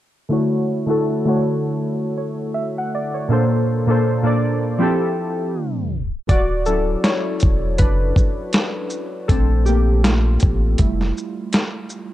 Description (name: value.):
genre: lo-fi hip hop.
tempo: 80 BPM.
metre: 4/4.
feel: swing 57% on 16ths.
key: D major.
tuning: A4 = 440 Hz.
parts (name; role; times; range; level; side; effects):
warm analog keys; accompaniment; 0.3-12.1 s; Bb2 to F#5; -20 LUFS; equal; chorus, low-pass filter.
warm sub bass; bass; 6.3-11.1 s; D1 to Bb1; -19 LUFS; equal; none.
dusty soul sampler-style drum kit; drums; 6.3-12.1 s; hi-hat, kick drum, shaker, snare drum; -18 LUFS; equal; overdrive, vintage 12-bit sampler grit.
room: light reverb.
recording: tape stop.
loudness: -17 LUFS.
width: side -14 dB against mid.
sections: 0.3-6.3 A section; 6.3-12.1 B section.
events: filter sweep on synth keys 0.3-6.3; tape stop 5.5-6.3; synth keys solo 6.3-12.1.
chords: 0.3 Dmaj9; 3.3 Bbmaj9; 4.8 Fmaj9; 6.3 Dmaj9; 9.3 Bbmaj9; 10.8 Fmaj9.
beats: | 0.29 1.04 1.79 2.54 | 3.29 4.04 4.79 5.54 | 6.29 7.04 7.79 8.54 | 9.29 10.04 10.79 11.54.